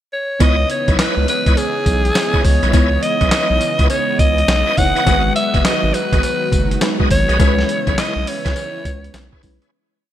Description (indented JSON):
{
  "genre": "R&B, new jack swing",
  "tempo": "103 BPM",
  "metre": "4/4",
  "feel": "swing 63% on 16ths",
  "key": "C# minor",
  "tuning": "A4 = 442 Hz",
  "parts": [
    { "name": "breathy alto saxophone", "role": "melody", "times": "0.1-9.4 s", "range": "G#4 to F#5", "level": "-19 LUFS", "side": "equal", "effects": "none" },
    { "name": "FM electric piano with soft pad layer", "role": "accompaniment", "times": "0.4-9.7 s", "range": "G#3 to C#5", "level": "-24 LUFS", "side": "left 1 dB", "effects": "chorus, phaser" },
    { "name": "warm analog pad", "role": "sustained chords", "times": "0.4-9.7 s", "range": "C#3 to D#5", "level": "-26 LUFS", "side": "right 1 dB", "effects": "chorus" },
    { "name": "bright tonewheel organ", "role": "stabs", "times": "0.4-9.7 s", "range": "E4 to D#5", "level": "-25 LUFS", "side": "equal", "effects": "overdrive, chorus vibrato, fast rotary speaker" },
    { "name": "round analog bass", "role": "bass", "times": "0.4-9.6 s", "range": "F#1 to C#2", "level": "-19 LUFS", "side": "equal", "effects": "none" },
    { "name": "boom bap sampler-style drum kit", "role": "drums", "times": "0.4-9.7 s", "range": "handclaps, hi-hat, kick drum, snare drum, tambourine", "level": "-18 LUFS", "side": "equal", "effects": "gated reverb" },
    { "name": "cowbell", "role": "percussion", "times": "0.4-9.3 s", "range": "none", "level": "-33 LUFS", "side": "left 6 dB", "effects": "none" }
  ],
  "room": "light reverb, digital ambience",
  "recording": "bright 1980s-style digital production",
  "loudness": "-13 LUFS",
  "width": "side -11 dB against mid",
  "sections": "0.0-0.4 pickup bar; 0.4-9.7 chorus",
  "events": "fade-out 7.4-9.7",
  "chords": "0.4 C#m9; 5.1 G#m7; 7.4 C#m7"
}